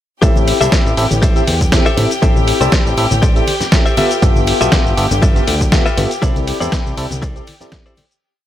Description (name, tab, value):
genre	filtered disco house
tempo	120 BPM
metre	4/4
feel	swing 54% on 16ths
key	A minor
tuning	A4 = 442 Hz
part	tine electric piano	accompaniment	0.2-7.9 s	B3 to E5	-19 LUFS	left 1 dB	phaser, vintage 12-bit sampler grit, sidechain pumping
part	dark chamber string section	sustained chords	0.2-8.2 s	G4 to G5	-23 LUFS	left 2 dB	sidechain pumping
part	direct-recorded clean electric guitar	riff	0.2-8.0 s	E4 to E5	-22 LUFS	left 4 dB	sidechain pumping
part	fat analog bass	bass	0.2-7.4 s	G1 to E2	-18 LUFS	equal	sidechain pumping
part	dusty soul sampler-style drum kit	drums	0.2-8.2 s	hi-hat, ride cymbal, shaker, snare drum	-20 LUFS	equal	none
part	electronic kick drum	drums	0.2-7.8 s	none	-14 LUFS	equal	none
part	tambourine and congas	percussion	0.2-8.2 s	none	-25 LUFS	left 1 dB	sidechain pumping on perc
room	little or no reverb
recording	none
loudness	-11 LUFS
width	side -12 dB against mid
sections	0.2-8.2 drop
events	drop 0.2-8.2; fade-out 5.6-8.2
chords	0.2 Am7; 4.0 G13; 6.2 C69